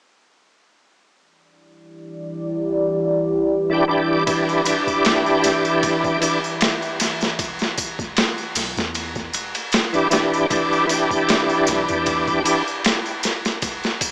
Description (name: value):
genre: trip hop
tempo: 77 BPM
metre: 4/4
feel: swing 54% on 16ths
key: E minor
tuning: A4 = 440 Hz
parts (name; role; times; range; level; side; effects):
- deep dark ambient pad; sustained chords; 2.1-7.4 s; E3 to E5; -23 LUFS; equal; chorus, built-in reverb
- bright tonewheel organ; accompaniment; 3.7-12.6 s; E3 to G4; -18 LUFS; equal; chorus vibrato, slow rotary speaker, tremolo, low-pass filter, tape echo
- boom bap sampler-style drum kit; drums; 4.3-14.1 s; hi-hat, kick drum, ride cymbal, snare drum; -22 LUFS; equal; vintage 12-bit sampler grit, tape echo
- tambourine; percussion; 4.3-14.1 s; none; -28 LUFS; equal; tape echo
- soft 808-style bass; bass; 7.4-13.8 s; E1 to E2; -36 LUFS; equal; none
room: moderate spring reverb, RT60 1.7 s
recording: echo-heavy mix, small speaker sound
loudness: -17 LUFS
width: side -27 dB against mid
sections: 1.2-7.4 A section; 7.4-14.1 B section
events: none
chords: 1.2 Em7